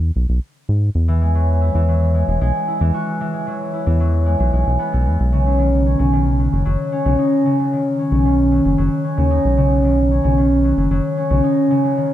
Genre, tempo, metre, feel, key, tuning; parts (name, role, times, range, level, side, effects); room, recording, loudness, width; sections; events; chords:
folktronica; 113 BPM; 4/4; straight; E major; A4 = 438 Hz
round analog bass; bass; 0.0-11.4 s; E1 to G#2; -16 LUFS; equal
concert harp; arpeggios; 1.1-12.1 s; C#3 to F#4; -17 LUFS; equal; digital delay
moderate lush hall reverb, RT60 2.0 s, studio ambience; dark, warm production; -15 LUFS; side -12 dB against mid
0.0-12.1 A section
0.0 Eadd9; 5.2 Badd9